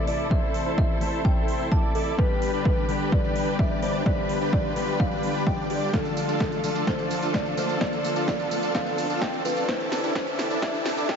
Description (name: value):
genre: EDM, festival progressive house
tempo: 128 BPM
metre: 4/4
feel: straight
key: unclear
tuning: A4 = 441 Hz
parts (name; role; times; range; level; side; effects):
- kalimba; melody; 0.0-11.2 s; G4 to A5; -30 LUFS; equal; ping-pong delay
- mellow electric guitar; accompaniment; 0.0-11.2 s; D3 to A4; -32 LUFS; left 6 dB; spring reverb, sidechain pumping
- rich studio string section; sustained chords; 0.0-11.2 s; C3 to B4; -35 LUFS; equal; sidechain pumping
- big supersaw lead; riff; 0.0-11.2 s; D4 to D5; -29 LUFS; right 1 dB; sidechain pumping, low-pass filter, ping-pong delay
- riser; sound effects; 3.3-11.2 s; none; -35 LUFS; right 1 dB; none
- big-room dance drum kit; drums; 0.1-11.2 s; hi-hat, snare drum, tambourine; -33 LUFS; right 1 dB; overdrive
- electronic kick drum; drums; 0.3-11.2 s; none; -26 LUFS; equal; overdrive
room: light reverb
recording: high-pass filter, nothing above 7.7 kHz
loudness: -22 LUFS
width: side -6 dB against mid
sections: 0.0-11.2 A section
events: build-up 0.0-11.2; filter sweep 0.0-11.2; riser 3.3-11.2; drum fill 5.9-11.2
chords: 0.0 Am; 2.2 G; 5.9 Dm; 9.7 C